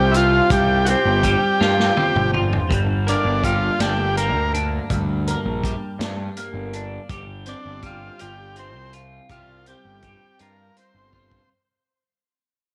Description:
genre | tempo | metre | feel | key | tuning
psychedelic rock | 55 BPM (dotted quarters) | 6/8 | straight | unclear | A4 = 441 Hz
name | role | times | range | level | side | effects
combo organ | melody | 0.0-11.5 s | D4 to C5 | -24 LUFS | equal | slapback echo
twelve-string electric guitar | riff | 0.0-11.5 s | G2 to F4 | -27 LUFS | equal | phaser, double-tracked
fuzz picked electric bass | bass | 0.0-11.4 s | G1 to G2 | -25 LUFS | equal | overdrive
vintage drum kit | drums | 0.1-11.5 s | hi-hat, kick drum, snare drum, toms | -27 LUFS | equal | none
room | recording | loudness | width
moderate echo chamber reverb, RT60 2.0 s | none | -20 LUFS | mono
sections
0.0-11.5 A section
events
fade-out 0.0-11.5; transistor combo organ solo 0.0-11.5; drum fill 1.6-2.7, 11.1-11.5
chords
0.0 Fsus2; 2.7 Gm; 7.1 Fsus2/G

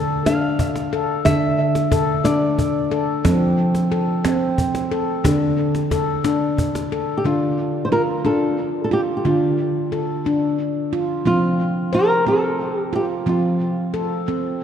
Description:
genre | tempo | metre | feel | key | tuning
world meditative, meditative tuned percussion | 60 BPM (dotted quarters) | 6/8 | straight | D minor | A4 = 441 Hz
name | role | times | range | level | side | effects
flamenco guitar | melody | 0.0-3.0, 7.2-14.0 s | F4 to F5 | -22 LUFS | right 1 dB | diffuse ambient delay
handpan | arpeggios | 0.0-14.6 s | D3 to C5 | -19 LUFS | left 1 dB | diffuse ambient delay
cajon | percussion | 0.3-6.9 s | none | -26 LUFS | equal | none
room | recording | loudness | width
wet church reverb, RT60 2.9 s | dark, warm production | -17 LUFS | side -8 dB against mid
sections
0.0-7.2 A section; 7.2-14.6 B section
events
none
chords
0.0 Dm; 3.2 F; 5.2 D5; 7.2 Dm; 11.3 F5

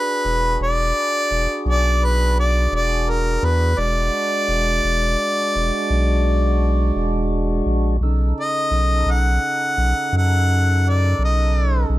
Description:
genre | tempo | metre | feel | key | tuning
slow blues | 57 BPM (dotted quarters) | 12/8 | straight | E mixolydian | A4 = 439 Hz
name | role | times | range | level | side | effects
warm harmonica | melody | 0.0-11.9 s | A#4 to F#5 | -21 LUFS | equal | none
tonewheel organ | sustained chords | 0.0-12.0 s | C#3 to A4 | -25 LUFS | right 1 dB | slow rotary speaker, overdrive
saturated sub bass | bass | 0.2-12.0 s | E1 to F#2 | -18 LUFS | equal | none
room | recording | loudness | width
light reverb | none | -16 LUFS | side -16 dB against mid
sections
0.0-12.0 A section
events
none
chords
0.0 E7; 8.0 B7

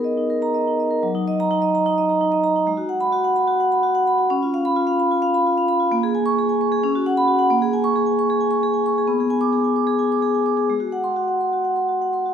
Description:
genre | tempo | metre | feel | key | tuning
classical, contemporary piece for solo vibraphone | 260 BPM (eighths) | 7/8 | rubato | F# major | A4 = 440 Hz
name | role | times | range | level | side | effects
vibraphone with medium mallets | solo | 0.0-12.3 s | F#3 to D6 | -18 LUFS | equal | none
room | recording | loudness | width
wet recital hall reverb, RT60 1.6 s | recorded in a church or concert hall | -17 LUFS | side -8 dB against mid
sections
0.0-1.0 A section; 1.0-12.3 B section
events
none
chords
0.0 Bmaj7; 1.0 F#6; 2.7 G#m7; 4.3 C#7; 5.9 A#m7; 6.8 C#7sus4; 7.5 A#m7; 9.1 Bm6; 10.7 G#7

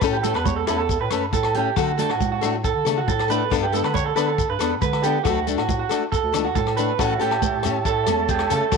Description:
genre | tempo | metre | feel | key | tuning
highlife guitar band | 138 BPM | 4/4 | straight | A mixolydian | A4 = 441 Hz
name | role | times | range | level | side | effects
picked plugged-in steel-string acoustic guitar | accompaniment | 0.0-8.8 s | E3 to A4 | -25 LUFS | left 13 dB | none
mellow bass clarinet | bass | 0.0-8.8 s | C#2 to D3 | -28 LUFS | equal | none
vintage drum kit | drums | 0.0-8.8 s | hi-hat, kick drum, rim click | -28 LUFS | left 3 dB | none
agogo bells | percussion | 0.0-8.8 s | none | -32 LUFS | left 11 dB | none
congas | percussion | 0.0-8.8 s | none | -31 LUFS | right 12 dB | none
shekere | percussion | 0.0-8.8 s | none | -32 LUFS | left 6 dB | none
electric guitar through a small old amp | arpeggios | 0.1-8.8 s | E4 to C#5 | -23 LUFS | right 11 dB | tape echo
overdriven combo organ | sustained chords | 7.0-8.8 s | C#5 to A5 | -30 LUFS | equal | lush chorus
room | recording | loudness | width
moderate plate reverb, RT60 1.5 s, small room ambience | 1960s-style stereo with parts hard left and right | -19 LUFS | side -5 dB against mid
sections
0.0-7.0 A section; 7.0-8.8 B section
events
clean electric guitar solo 7.0-8.8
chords
0.0 A; 1.8 D; 3.5 Gadd9; 5.3 D; 7.0 A

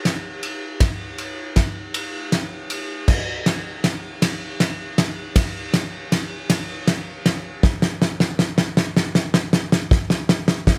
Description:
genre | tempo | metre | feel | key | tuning
rock | 53 BPM (dotted quarters) | 6/8 | straight | none | none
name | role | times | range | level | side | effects
loose indie drum kit | drums | 0.1-10.8 s | crash cymbal, kick drum, ride cymbal, snare drum | -22 LUFS | equal | none
room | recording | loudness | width
light reverb | none | -22 LUFS | mono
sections
0.0-10.8 A section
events
build-up 0.0-10.8; drum fill 0.0-10.8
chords
none

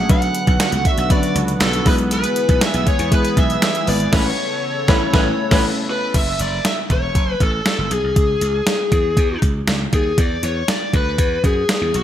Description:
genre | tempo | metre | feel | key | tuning
1980s-style pop | 119 BPM | 4/4 | straight | F# minor | A4 = 438 Hz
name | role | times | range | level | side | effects
bluesy overdriven lead guitar | melody | 0.0-12.0 s | F#4 to F#5 | -21 LUFS | left 1 dB | distortion
FM electric piano | accompaniment | 0.0-6.2 s | F#3 to B4 | -22 LUFS | left 2 dB | chorus
sweeping resonant pad | sustained chords | 0.0-6.1 s | C#3 to A4 | -27 LUFS | right 1 dB | chorus
slap bass | bass | 0.0-12.0 s | E1 to F#2 | -22 LUFS | equal | none
clean 12-bit digital drum machine | drums | 0.1-12.0 s | crash cymbal, hi-hat, kick drum, snare drum | -18 LUFS | equal | overdrive, gated reverb
group handclap | percussion | 0.6-3.7 s | none | -33 LUFS | right 7 dB | none
warm horn section | stabs | 4.1-5.6 s | E3 to B4 | -27 LUFS | right 4 dB | none
room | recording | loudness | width
moderate plate reverb, RT60 1.5 s, digital ambience | bright 1980s-style digital production | -15 LUFS | side -11 dB against mid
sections
0.0-6.1 A section; 6.1-12.0 B section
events
band accent 4.1-6.1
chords
0.1 Bm; 1.9 E/B; 4.1 Aadd9; 6.1 F#m; 8.2 C#m; 10.2 E5

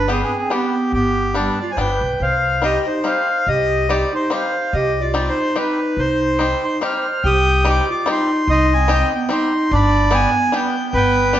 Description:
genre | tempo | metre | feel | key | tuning
musette waltz | 144 BPM | 3/4 | swing 55% on 8ths | C harmonic minor | A4 = 439 Hz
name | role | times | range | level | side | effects
accordion | melody | 0.0-11.4 s | D4 to F6 | -19 LUFS | equal | none
mellow clarinet | second line | 0.0-11.4 s | G3 to C5 | -21 LUFS | right 2 dB | none
upright bass | bass | 0.0-11.4 s | G1 to C2 | -21 LUFS | equal | none
bluegrass banjo | accompaniment | 0.1-11.4 s | G3 to G4 | -24 LUFS | left 4 dB | none
room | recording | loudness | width
moderate recital hall reverb, RT60 1.5 s | nothing above 7.7 kHz | -15 LUFS | side -11 dB against mid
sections
0.0-7.2 A section; 7.2-11.4 A section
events
none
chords
0.0 G; 2.2 Cm; 9.7 G

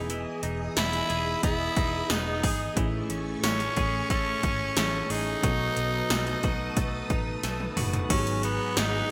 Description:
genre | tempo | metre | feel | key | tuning
1980s-style pop | 90 BPM | 4/4 | straight | E major | A4 = 439 Hz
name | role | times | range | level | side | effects
raspy tenor saxophone | melody | 0.0-9.1 s | B3 to E4 | -32 LUFS | equal | digital delay
bell-like tine electric piano | accompaniment | 0.0-9.1 s | G#2 to D#5 | -37 LUFS | equal | none
string machine, violins | sustained chords | 0.0-9.1 s | A3 to D#6 | -40 LUFS | equal | ensemble chorus
twelve-string electric guitar | riff | 0.0-9.1 s | E3 to G#4 | -39 LUFS | equal | subtle chorus
vintage muted fingered electric bass | bass | 0.0-9.0 s | E1 to B1 | -36 LUFS | equal | none
80s electronic pad drums | drums | 0.1-8.9 s | crash cymbal, hi-hat, kick drum, snare drum, tambourine, toms | -32 LUFS | equal | gated reverb on snare and toms, gated reverb
tambourine | percussion | 0.8-8.9 s | none | -45 LUFS | equal | none
room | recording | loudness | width
moderate lush hall reverb, RT60 2.4 s | bright 1980s-style digital production | -27 LUFS | mono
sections
0.0-8.1 A section; 8.1-9.1 B section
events
drum fill 7.4-8.1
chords
0.0 Emaj7; 2.8 Amaj7; 5.4 B7; 8.1 G#m7

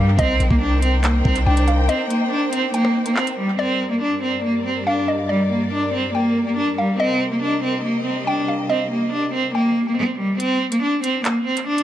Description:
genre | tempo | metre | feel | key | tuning
hip hop, drill | 141 BPM | 4/4 | half-time | unclear | A4 = 439 Hz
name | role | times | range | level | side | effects
bright cello | melody | 0.0-11.8 s | G3 to D4 | -19 LUFS | equal | low-pass filter, tape echo
hollow square pluck | second line | 0.0-10.4 s | D5 to G5 | -25 LUFS | left 1 dB | chorus, tape echo
dark symphonic string section | sustained chords | 0.0-10.4 s | G2 to G5 | -28 LUFS | left 1 dB | none
long sustained 808-style bass | bass | 0.0-1.9 s | Bb1 to G2 | -18 LUFS | equal | none
drill drum kit | drums | 0.2-3.4, 10.4-11.8 s | handclaps, hi-hat, kick drum, rim click | -24 LUFS | equal | vintage 12-bit sampler grit, tape echo
room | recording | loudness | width
light reverb | echo-heavy mix | -17 LUFS | side -12 dB against mid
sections
0.0-3.6 A section; 3.6-10.4 B section; 10.4-11.8 C section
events
break 1.9-3.6; kick muted 10.4-11.8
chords
0.2 Cm7; 3.6 Gm; 7.0 Cm7; 10.4 N.C.

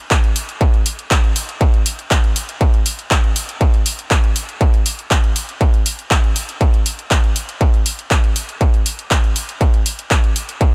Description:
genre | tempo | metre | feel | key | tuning
techno | 120 BPM | 4/4 | straight | none | none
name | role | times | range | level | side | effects
electronic kick drum | drums | 0.1-10.7 s | none | -16 LUFS | equal | distortion, overdrive
techno drum kit | drums | 0.1-10.7 s | handclaps, hi-hat | -24 LUFS | equal | overdrive, sidechain pumping on hats, sidechain pumping on cymbals
room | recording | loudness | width
little or no reverb | none | -17 LUFS | mono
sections
0.0-10.7 A section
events
none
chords
none

